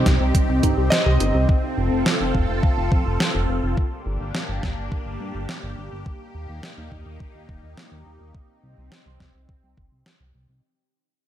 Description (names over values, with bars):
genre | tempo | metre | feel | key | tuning
synthwave | 105 BPM | 4/4 | straight | unclear | A4 = 439 Hz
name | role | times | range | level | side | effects
lush unison pad | sustained chords | 0.0-10.6 s | Bb3 to A4 | -27 LUFS | right 1 dB | chorus, phaser, sidechain pumping
warbly dusty pluck | arpeggios | 0.0-1.4 s | G3 to C5 | -29 LUFS | left 2 dB | chorus, cassette tape, ping-pong delay
chorused synth bass | bass | 0.0-10.6 s | Eb1 to G2 | -24 LUFS | equal | sidechain pumping
clean 12-bit digital drum machine | drums | 0.1-10.2 s | hi-hat, snare drum | -25 LUFS | right 1 dB | gated reverb
electronic kick drum | drums | 0.1-9.9 s | none | -21 LUFS | equal | none
bright electric grand piano | melody | 0.9-1.4 s | Eb5 | -27 LUFS | equal | ping-pong delay
room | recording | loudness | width
light reverb | none | -19 LUFS | side -11 dB against mid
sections
0.0-10.6 A section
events
fade-out 0.0-10.6; filter sweep on analog synth bass 0.0-10.6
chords
0.0 Cm; 1.5 F; 3.8 Gm; 6.1 Eb; 8.3 Cm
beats
0.34 0.92 | 1.49 2.06 2.63 3.20 | 3.77 4.34 4.92 5.49 | 6.06 6.63 7.20 7.77 | 8.35 8.92 9.49 10.06